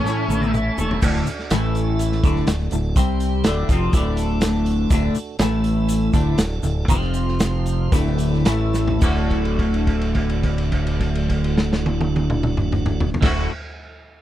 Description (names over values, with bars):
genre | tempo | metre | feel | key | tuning
psychedelic rock | 106-124 BPM | 4/4 | straight | D mixolydian | A4 = 440 Hz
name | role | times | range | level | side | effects
bluesy overdriven lead guitar | melody | 0.0-0.5 s | C#4 | -28 LUFS | left 1 dB | wah, distortion, tape echo
tonewheel organ | sustained chords | 0.0-13.5 s | E3 to A5 | -33 LUFS | right 6 dB | slow rotary speaker
twelve-string electric guitar | riff | 0.0-13.5 s | D2 to F#4 | -22 LUFS | equal | phaser, double-tracked left and right
growling fingered electric bass | bass | 0.0-13.5 s | D1 to A2 | -23 LUFS | equal | overdrive
raw garage drum kit | drums | 0.1-13.4 s | crash cymbal, hi-hat, kick drum, snare drum, toms | -22 LUFS | equal | none
egg shaker | percussion | 0.1-9.3 s | none | -38 LUFS | left 8 dB | none
room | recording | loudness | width
little or no reverb | dry, close 1970s-style studio recording | -18 LUFS | side -13 dB against mid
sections
0.0-1.0 A section; 1.0-9.0 B section; 9.0-13.6 C section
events
drum fill 0.1-1.0, 8.7; slowing down 4.9-9.0; held note 9.0-13.2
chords
0.0 A; 1.0 D; 1.5 A5; 2.2 D; 3.0 C5; 3.5 D; 5.4 A5; 6.1 D; 6.9 F5; 7.9 D; 8.5 A5; 9.0 D